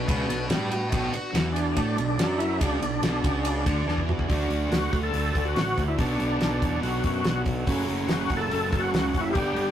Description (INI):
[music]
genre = classic rock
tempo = 142 BPM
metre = 4/4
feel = straight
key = B minor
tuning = A4 = 440 Hz
[part]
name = overdriven tonewheel organ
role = melody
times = 0.0-9.7 s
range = B3 to A4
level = -29 LUFS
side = left 1 dB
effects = slow rotary speaker, chorus vibrato, analog delay
[part]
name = octave-fuzz lead guitar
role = second line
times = 0.0-1.4 s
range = E4 to B4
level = -30 LUFS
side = left 1 dB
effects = distortion
[part]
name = picked plugged-in steel-string acoustic guitar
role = accompaniment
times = 0.0-9.7 s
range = F#2 to A4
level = -34 LUFS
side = right 4 dB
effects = none
[part]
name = overdriven electric guitar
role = riff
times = 0.0-9.7 s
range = F#2 to D4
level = -33 LUFS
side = right 6 dB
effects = none
[part]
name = sludgy distorted guitar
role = riff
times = 0.0-9.7 s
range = F#2 to G4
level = -33 LUFS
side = left 3 dB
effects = overdrive
[part]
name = fuzz fingered electric bass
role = bass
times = 0.0-9.7 s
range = F#1 to A2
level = -30 LUFS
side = equal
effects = overdrive
[part]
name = damped 70s drum kit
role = drums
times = 0.1-9.7 s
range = hi-hat, kick drum, ride cymbal, snare drum, toms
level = -28 LUFS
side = equal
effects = none
[sound]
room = moderate studio reverb, RT60 0.6 s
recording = rough rehearsal-room recording, tube saturation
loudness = -23 LUFS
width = side -10 dB against mid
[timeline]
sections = 0.0-4.3 A section; 4.3-9.7 B section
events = drum fill 3.9-4.3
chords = 0.0 Bm; 4.3 D; 6.0 Bm; 7.7 F#m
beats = 0.08 0.50 | 0.92 1.34 1.76 2.18 | 2.60 3.02 3.45 3.87 | 4.29 4.71 5.13 5.56 | 5.98 6.40 6.82 7.25 | 7.67 8.09 8.51 8.93 | 9.36